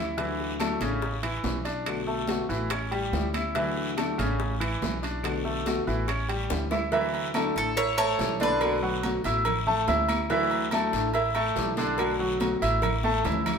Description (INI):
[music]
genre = latin, Cuban son and guajira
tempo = 142 BPM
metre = 4/4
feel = straight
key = D major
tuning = A4 = 441 Hz
[part]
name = nylon-string guitar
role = accompaniment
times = 0.0-13.6 s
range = B2 to F#4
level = -32 LUFS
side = left 3 dB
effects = none
[part]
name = bright grand piano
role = arpeggios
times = 0.0-13.6 s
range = C#3 to E6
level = -28 LUFS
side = equal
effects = none
[part]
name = upright bass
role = bass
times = 0.0-13.6 s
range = A1 to D2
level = -32 LUFS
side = equal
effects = none
[part]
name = bongos and cowbell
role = percussion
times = 0.2-13.6 s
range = none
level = -37 LUFS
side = right 1 dB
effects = none
[part]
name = congas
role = percussion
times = 0.2-13.6 s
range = none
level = -36 LUFS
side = equal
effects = none
[part]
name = guiro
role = percussion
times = 0.2-13.6 s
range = none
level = -40 LUFS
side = left 4 dB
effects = none
[part]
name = timbales and agogo bells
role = percussion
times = 0.2-13.6 s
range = none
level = -36 LUFS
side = right 3 dB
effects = none
[part]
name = claves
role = percussion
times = 0.6-13.6 s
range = none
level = -41 LUFS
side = right 2 dB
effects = none
[part]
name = Cuban tres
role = melody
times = 7.6-9.0 s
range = A4 to C#5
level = -28 LUFS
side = right 3 dB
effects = none
[sound]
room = wet studio reverb, RT60 0.8 s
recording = band playing live in one room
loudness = -24 LUFS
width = side -6 dB against mid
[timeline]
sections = 0.0-6.9 A section; 6.9-13.6 B section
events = drum fill 0.0, 6.1-6.9, 13.0-13.6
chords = 0.2 Dadd9; 1.0 A7; 1.9 Bm7; 2.7 A7; 3.6 Dadd9; 4.4 A7; 5.2 Bm7; 6.1 A7; 6.9 Dadd9; 7.8 A7; 8.6 Bm7; 9.5 A7; 10.3 Dadd9; 11.1 A7; 12.0 Bm7; 12.8 A7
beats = | 0.18 0.60 1.02 1.45 | 1.87 2.29 2.71 3.13 | 3.56 3.98 4.40 4.82 | 5.24 5.67 6.09 6.51 | 6.93 7.35 7.77 8.19 | 8.62 9.04 9.46 9.88 | 10.30 10.72 11.14 11.56 | 11.98 12.40 12.83 13.25